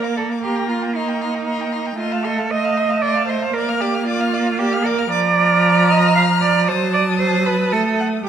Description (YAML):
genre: quick classical-period movement for string quartet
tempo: 115 BPM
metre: 3/4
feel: rubato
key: Bb major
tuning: A4 = 443 Hz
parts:
  - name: rich violin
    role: melody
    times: 0.0-8.3 s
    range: A5 to F6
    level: -27 LUFS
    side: left 9 dB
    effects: none
  - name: rich violin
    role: second line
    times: 0.0-8.3 s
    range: D5 to Bb5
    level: -25 LUFS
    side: left 3 dB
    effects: none
  - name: rich viola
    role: accompaniment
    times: 0.0-8.3 s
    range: F3 to Bb3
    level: -20 LUFS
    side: right 2 dB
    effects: none
  - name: rich cello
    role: bass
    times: 0.0-8.3 s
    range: Eb4 to F5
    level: -19 LUFS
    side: right 5 dB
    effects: none
room: moderate recital hall reverb, RT60 1.6 s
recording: none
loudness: -16 LUFS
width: side -9 dB against mid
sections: 0.0-8.3 A section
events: none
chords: 0.4 Cm7/Bb; 2.0 F7/A; 3.5 Bb; 5.1 Bbadd11/F; 6.7 F#dim7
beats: | 0.43 0.95 1.47 | 1.99 2.51 3.02 | 3.54 4.06 4.59 | 5.11 5.63 6.16 | 6.68 7.20 7.73 | 8.26